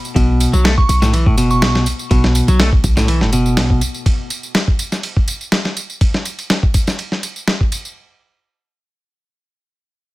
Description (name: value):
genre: breakbeat, breaks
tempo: 123 BPM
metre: 4/4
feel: swing 54% on 16ths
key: unclear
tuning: A4 = 440 Hz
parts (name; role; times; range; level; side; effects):
- tambourine; drums; 0.0-7.9 s; none; -26 LUFS; right 2 dB; overdrive
- clean electric guitar; riff; 0.2-3.8 s; A2 to A3; -17 LUFS; equal; tube saturation, ping-pong delay
- warm 808-style bass; bass; 0.2-3.9 s; F#1 to B1; -16 LUFS; equal; tube saturation
- dusty soul sampler-style drum kit; drums; 0.2-7.8 s; kick drum, ride cymbal, snare drum; -16 LUFS; equal; none
- glassy synth bell; melody; 0.8-1.7 s; C#6; -23 LUFS; right 2 dB; chorus, old record sound, ping-pong delay
room: little or no reverb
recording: none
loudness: -13 LUFS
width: side -19 dB against mid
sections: 0.2-8.0 A section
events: none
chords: 0.2 B5